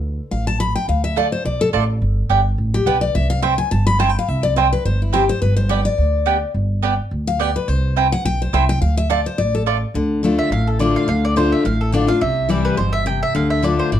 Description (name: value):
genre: bluegrass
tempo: 212 BPM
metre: 4/4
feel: swing 55% on 8ths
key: D dorian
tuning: A4 = 440 Hz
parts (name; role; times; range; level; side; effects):
- upright bass; bass; 0.0-14.0 s; G1 to D2; -19 LUFS; equal; none
- picked steel-string acoustic guitar; accompaniment; 0.3-14.0 s; A2 to B5; -20 LUFS; left 4 dB; none
- mandolin; stabs; 1.2-9.8 s; A3 to A5; -19 LUFS; right 6 dB; none
- mandolin; melody; 10.4-14.0 s; A4 to G5; -22 LUFS; right 1 dB; none
room: moderate studio reverb, RT60 0.5 s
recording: dark, warm production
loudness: -16 LUFS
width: side -10 dB against mid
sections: 0.0-9.9 A section; 9.9-14.0 B section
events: steel-string acoustic guitar solo 0.0-9.9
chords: 0.0 Dm; 2.0 G; 3.1 C; 5.4 G; 7.7 C; 8.8 Dm; 12.2 C; 13.4 Dm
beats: 0.03 0.31 0.60 | 0.88 1.17 1.45 1.73 | 2.02 2.30 2.58 2.87 | 3.15 3.43 3.72 4.00 | 4.28 4.57 4.85 5.13 | 5.42 5.70 5.98 6.27 | 6.55 6.83 7.12 7.40 | 7.68 7.97 8.25 8.53 | 8.82 9.10 9.38 9.67 | 9.95 10.23 10.52 10.80 | 11.08 11.37 11.65 11.93 | 12.22 12.50 12.78 13.07 | 13.35 13.63 13.92